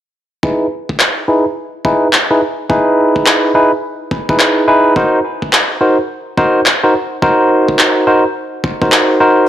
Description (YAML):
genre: glitch hop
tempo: 106 BPM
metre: 4/4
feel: swing 63% on 16ths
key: unclear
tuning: A4 = 441 Hz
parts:
  - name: barky tine electric piano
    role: stabs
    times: 0.4-9.5 s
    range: D#4 to B#4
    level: -12 LUFS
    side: equal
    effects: overdrive, sidechain pumping, low-pass filter, tape echo
  - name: electronic kick drum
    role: drums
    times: 0.4-8.9 s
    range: none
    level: -20 LUFS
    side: equal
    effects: high-pass filter on kick, high-pass filter on room
  - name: electronic handclaps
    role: drums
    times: 1.0-9.1 s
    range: none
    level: -12 LUFS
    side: equal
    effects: overdrive, high-pass filter on snare, high-pass filter on hats, high-pass filter on room
room: moderate plate reverb, RT60 1.4 s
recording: none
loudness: -10 LUFS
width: side -11 dB against mid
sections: 0.4-9.5 A section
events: filter sweep on tine electric piano 0.4-9.5; kick drops out 8.9-9.5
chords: 0.4 Emaj7/D#; 5.0 D#m6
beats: | 0.43 1.00 1.56 2.13 | 2.70 3.26 3.83 4.39 | 4.96 5.53 6.09 6.66 | 7.22 7.79 8.36 8.92